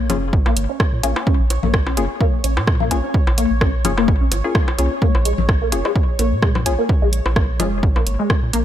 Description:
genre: minimal techno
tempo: 128 BPM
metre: 4/4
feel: swing 55% on 16ths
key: Bb minor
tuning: A4 = 437 Hz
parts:
  - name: rubbery square bass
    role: bass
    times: 0.0-8.6 s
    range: F1 to Bb2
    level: -21 LUFS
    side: equal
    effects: tube saturation, sidechain pumping
  - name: pulsing gated texture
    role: texture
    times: 0.0-8.6 s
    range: Db5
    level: -30 LUFS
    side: right 1 dB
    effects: chorus, built-in reverb, sidechain pumping
  - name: resonant blip pluck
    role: riff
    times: 0.1-8.6 s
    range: Ab3 to F4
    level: -24 LUFS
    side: left 2 dB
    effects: phaser, lush chorus, sidechain pumping, dub echo
  - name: filtered dub chord stab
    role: stabs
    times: 0.1-7.7 s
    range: Bb3 to Ab4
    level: -26 LUFS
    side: left 4 dB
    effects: analog chorus, ping-pong delay
  - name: punchy analog drum machine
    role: drums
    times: 0.1-8.6 s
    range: hi-hat, rim click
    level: -24 LUFS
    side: right 1 dB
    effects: none
  - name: bongos, congas and woodblock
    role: percussion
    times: 0.1-8.4 s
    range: none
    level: -26 LUFS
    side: left 4 dB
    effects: ping-pong delay
  - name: electronic kick drum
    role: drums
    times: 0.3-8.4 s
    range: none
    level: -18 LUFS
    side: equal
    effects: none
room: digital ambience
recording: none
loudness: -15 LUFS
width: side -11 dB against mid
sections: 0.0-8.6 A section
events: none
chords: 0.0 Bbm7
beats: 0.33 0.80 | 1.27 1.74 2.21 2.68 | 3.14 3.61 4.08 4.55 | 5.02 5.49 5.96 6.43 | 6.89 7.36 7.83 8.30

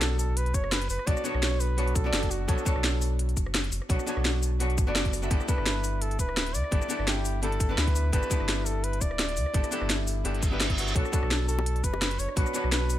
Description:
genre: liquid drum and bass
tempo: 170 BPM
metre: 4/4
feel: swing 54% on 16ths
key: B minor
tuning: A4 = 441 Hz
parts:
  - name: warm flugelhorn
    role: melody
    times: 0.0-3.2, 5.5-13.0 s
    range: F#4 to D5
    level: -34 LUFS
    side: right 1 dB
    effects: digital delay
  - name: archtop guitar, miked and amplified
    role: accompaniment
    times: 0.0-13.0 s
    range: B3 to E5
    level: -33 LUFS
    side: left 1 dB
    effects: dub echo
  - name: warm sub bass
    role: bass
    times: 0.0-13.0 s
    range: D1 to D2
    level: -29 LUFS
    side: equal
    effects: tube saturation
  - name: drum and bass drum kit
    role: drums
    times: 0.0-13.0 s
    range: cabasa, hi-hat, rim click, snare drum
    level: -30 LUFS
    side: equal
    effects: small room ambience
  - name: sub drop and reverse cymbal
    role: sound effects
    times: 0.0-1.1, 10.4-11.0 s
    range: none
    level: -36 LUFS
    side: right 2 dB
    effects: none
  - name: electronic kick drum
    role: drums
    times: 0.5-12.4 s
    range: none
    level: -27 LUFS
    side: equal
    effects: small room ambience
  - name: lush unison pad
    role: sustained chords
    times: 11.0-13.0 s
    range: D4 to C#6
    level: -46 LUFS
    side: right 2 dB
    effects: none
  - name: bongos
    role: percussion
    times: 11.6-12.0 s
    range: none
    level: -35 LUFS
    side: left 8 dB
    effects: none
room: little or no reverb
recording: none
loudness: -25 LUFS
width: side -13 dB against mid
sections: 0.0-13.0 A section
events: impact 0.0-1.1; reverse cymbal 10.4-11.0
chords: 0.0 Bm9; 5.3 G6; 11.0 Bm9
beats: 0.01 0.37 0.72 | 1.07 1.43 1.78 2.13 | 2.48 2.84 3.19 3.54 | 3.90 4.25 4.60 4.96 | 5.31 5.66 6.01 6.37 | 6.72 7.07 7.43 7.78 | 8.13 8.48 8.84 9.19 | 9.54 9.90 10.25 10.60 | 10.96 11.31 11.66 12.01 | 12.37 12.72

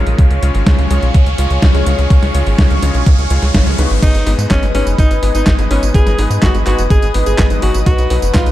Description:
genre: italo disco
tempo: 125 BPM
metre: 4/4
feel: straight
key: G# dorian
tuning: A4 = 441 Hz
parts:
  - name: lush unison pad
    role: sustained chords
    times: 0.0-8.5 s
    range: G#4 to D#6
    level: -22 LUFS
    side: equal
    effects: chorus, phaser
  - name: bright electric grand piano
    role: stabs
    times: 0.0-8.5 s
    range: G#2 to C#5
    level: -22 LUFS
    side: left 4 dB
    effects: vintage 12-bit sampler grit
  - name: tight sequencer bass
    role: bass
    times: 0.0-8.5 s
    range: F#1 to G#2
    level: -14 LUFS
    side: equal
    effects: tube saturation
  - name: riser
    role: sound effects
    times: 0.0-4.0 s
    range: none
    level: -26 LUFS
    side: equal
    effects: none
  - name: clean 12-bit digital drum machine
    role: drums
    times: 0.1-8.5 s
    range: crash cymbal, handclaps, hi-hat, snare drum, tambourine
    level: -21 LUFS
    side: equal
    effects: overdrive
  - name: electronic kick drum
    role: drums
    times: 0.2-8.4 s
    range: none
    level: -12 LUFS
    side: equal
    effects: overdrive
  - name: edgy alto saxophone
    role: melody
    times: 4.0-8.5 s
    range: C#4 to G#4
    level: -20 LUFS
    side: equal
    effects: vintage 12-bit sampler grit, ping-pong delay
room: light reverb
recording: dark, warm production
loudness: -10 LUFS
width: side -14 dB against mid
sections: 0.0-4.0 A section; 4.0-8.5 B section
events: riser 0.0-4.0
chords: 0.2 C#; 4.0 G#m; 7.9 B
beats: | 0.18 0.67 1.15 1.62 | 2.10 2.58 3.06 3.54 | 4.03 4.50 4.99 5.46 | 5.95 6.42 6.91 7.38 | 7.87 8.35

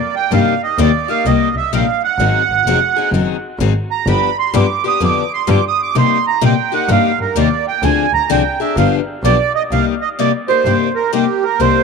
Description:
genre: acoustic string swing (jazz manouche)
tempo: 128 BPM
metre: 4/4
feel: swing 64% on 8ths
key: C minor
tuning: A4 = 439 Hz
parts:
  - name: accordion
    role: melody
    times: 0.0-11.8 s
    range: G4 to Eb6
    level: -16 LUFS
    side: right 10 dB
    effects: light tremolo tuning
  - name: picked steel-string acoustic guitar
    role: accompaniment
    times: 0.3-11.8 s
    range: C3 to Ab4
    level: -18 LUFS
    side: left 13 dB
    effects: none
  - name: rich double bass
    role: bass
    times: 0.3-11.7 s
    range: F1 to C3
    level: -17 LUFS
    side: equal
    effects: none
room: wet spring reverb, RT60 2.6 s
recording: 1960s-style stereo with parts hard left and right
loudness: -13 LUFS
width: side -5 dB against mid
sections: 0.0-9.7 A section; 9.7-11.8 B section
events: accordion solo 0.0-9.7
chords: 0.0 Cm7; 2.2 Ab7; 4.1 G7; 6.0 Cm7; 7.8 Dm7b5; 8.8 G7; 9.7 Cm7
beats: | 0.32 0.79 1.26 1.73 | 2.19 2.66 3.13 3.60 | 4.07 4.54 5.01 5.48 | 5.95 6.42 6.89 7.36 | 7.83 8.30 8.77 9.24 | 9.71 10.19 10.66 11.13 | 11.60

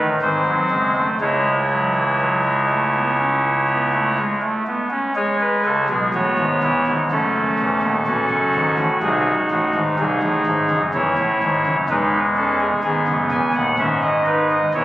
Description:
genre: classical, baroque-style 4-part fugue for pipe organ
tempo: 62 BPM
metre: 4/4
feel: straight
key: C# minor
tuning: A4 = 436 Hz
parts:
  - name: pipe organ, soft reed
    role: solo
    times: 0.0-14.8 s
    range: D#1 to G#5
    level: -16 LUFS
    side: equal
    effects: none
room: wet church reverb, RT60 3.1 s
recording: recorded on a phone in the room, studio reverb, compression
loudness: -16 LUFS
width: side -15 dB against mid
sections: 0.0-5.2 A section; 5.2-14.8 B section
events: none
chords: 0.2 G#7; 1.2 C#m; 7.1 F#m; 9.0 G#7; 10.9 C#m/E; 12.8 G#m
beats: 0.23 | 1.21 2.20 3.19 4.17 | 5.16 6.14 7.11 8.07 | 9.03 9.99 10.95 11.90 | 12.84 13.79 14.75

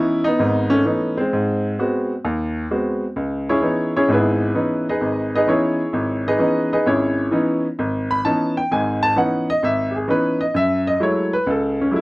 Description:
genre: jazz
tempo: 130 BPM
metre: 4/4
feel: swing 68% on 8ths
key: C# minor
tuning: A4 = 440 Hz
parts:
  - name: clear baby grand piano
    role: solo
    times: 0.0-12.0 s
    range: G#1 to B5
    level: -17 LUFS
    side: equal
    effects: none
room: light reverb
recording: dry, close 1970s-style studio recording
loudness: -17 LUFS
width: side -21 dB against mid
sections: 0.0-3.2 A section; 3.2-12.0 B section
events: grand piano solo 3.2-12.0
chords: 0.0 C#m9; 1.3 G#7#9; 3.2 C#m9; 10.5 F#m9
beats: 0.40 0.86 | 1.32 1.78 2.25 2.71 | 3.17 3.63 4.09 4.55 | 5.01 5.47 5.93 6.40 | 6.86 7.32 7.78 8.24 | 8.70 9.16 9.62 10.08 | 10.54 11.00 11.46 11.93

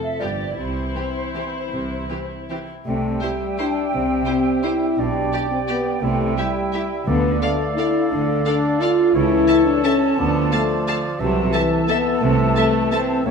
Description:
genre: classical, orchestral ballroom waltz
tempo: 150-189 BPM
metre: 3/4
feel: rubato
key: C major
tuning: A4 = 440 Hz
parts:
  - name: flute section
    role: second line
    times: 0.0-13.3 s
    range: C5 to A5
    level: -29 LUFS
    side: right 3 dB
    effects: none
  - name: warm studio violin section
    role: second line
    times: 0.0-13.0 s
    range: E4 to F5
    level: -32 LUFS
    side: left 2 dB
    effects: none
  - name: mellow French horn section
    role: sustained chords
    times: 0.0-13.3 s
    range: E3 to F4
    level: -21 LUFS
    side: left 2 dB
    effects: none
  - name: rich studio violin section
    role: melody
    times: 0.2-13.0 s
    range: G4 to A5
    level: -31 LUFS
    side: left 2 dB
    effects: none
  - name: rich studio viola section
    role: accompaniment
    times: 0.2-13.0 s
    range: E3 to A4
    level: -32 LUFS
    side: left 1 dB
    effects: none
  - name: dark studio double bass section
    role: bass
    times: 0.2-13.3 s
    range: G1 to D2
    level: -28 LUFS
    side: right 4 dB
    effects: none
  - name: warm studio cello section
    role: bass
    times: 0.2-13.3 s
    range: G2 to D3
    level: -27 LUFS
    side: right 4 dB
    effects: none
  - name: clear clarinet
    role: second line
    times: 2.9-13.3 s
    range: E4 to C#5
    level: -31 LUFS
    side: left 1 dB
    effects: none
  - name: mellow oboe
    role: second line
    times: 2.9-13.3 s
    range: C#5 to E5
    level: -30 LUFS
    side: right 3 dB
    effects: none
  - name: mellow bassoon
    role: accompaniment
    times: 2.9-13.3 s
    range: C#3 to G3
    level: -28 LUFS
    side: equal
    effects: none
  - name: timpani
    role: percussion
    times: 7.1-7.6 s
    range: D3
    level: -29 LUFS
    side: equal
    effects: none
room: wet recital hall reverb, RT60 1.3 s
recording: none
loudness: -18 LUFS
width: side -5 dB against mid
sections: 0.0-2.9 A section; 2.9-13.3 B section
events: none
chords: 0.2 G7; 0.6 C; 5.0 G/B; 6.0 C; 7.1 Dm; 9.1 A/C#; 10.2 Dm; 11.2 Am/C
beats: 0.21 | 0.58 0.96 1.35 | 1.73 2.11 2.50 | 2.86 3.22 3.59 | 3.93 4.27 4.64 | 4.99 5.33 5.69 | 6.03 6.38 6.74 | 7.08 7.42 7.78 | 8.11 8.45 8.81 | 9.14 9.48 9.84 | 10.18 10.52 10.87 | 11.20 11.54 11.89 | 12.22 12.56 12.92 | 13.25

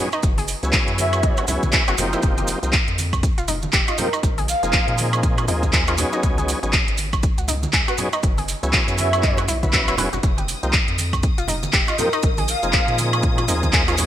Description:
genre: deep house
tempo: 120 BPM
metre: 4/4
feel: swing 59% on 16ths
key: unclear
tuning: A4 = 440 Hz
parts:
  - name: tonewheel organ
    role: stabs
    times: 0.0-14.1 s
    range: F3 to Cb5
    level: -26 LUFS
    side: equal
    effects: chorus vibrato, sidechain pumping, digital delay
  - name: analog pluck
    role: arpeggios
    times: 0.1-13.9 s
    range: Eb4 to Fb5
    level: -30 LUFS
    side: left 2 dB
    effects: chorus, cassette tape, sidechain pumping, digital delay
  - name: house drum kit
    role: drums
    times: 0.1-14.1 s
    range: handclaps, hi-hat, woodblock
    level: -22 LUFS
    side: right 1 dB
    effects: gated reverb
  - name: maracas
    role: percussion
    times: 0.1-14.1 s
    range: none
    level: -31 LUFS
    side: right 5 dB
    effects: none
  - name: round analog bass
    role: bass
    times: 0.2-14.0 s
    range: Fb1 to Bb2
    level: -25 LUFS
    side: equal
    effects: sidechain pumping
  - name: electronic kick drum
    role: drums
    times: 0.2-13.9 s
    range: none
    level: -21 LUFS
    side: equal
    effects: none
  - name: congas and bongos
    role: percussion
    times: 0.4-14.1 s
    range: none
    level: -32 LUFS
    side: right 3 dB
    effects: none
  - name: breathy flute-like synth lead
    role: melody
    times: 1.0-13.0 s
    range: Bb4 to F5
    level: -26 LUFS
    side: equal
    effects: ensemble chorus, digital delay
  - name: clear studio violin section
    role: texture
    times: 10.2-14.1 s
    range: Eb6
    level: -31 LUFS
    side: left 5 dB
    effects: sidechain pumping
room: light reverb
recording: bright 1980s-style digital production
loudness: -17 LUFS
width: side -11 dB against mid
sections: 0.0-14.1 A section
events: none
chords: 0.2 Gb9sus4; 2.2 F9sus4; 4.2 Bb9sus4; 6.2 Db9sus4; 8.2 Gb9sus4; 10.2 F9sus4; 12.2 Bb9sus4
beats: | 0.23 0.73 1.23 1.73 | 2.23 2.73 3.23 3.73 | 4.23 4.73 5.23 5.73 | 6.23 6.73 7.23 7.73 | 8.23 8.73 9.23 9.73 | 10.23 10.73 11.23 11.73 | 12.23 12.73 13.23 13.73

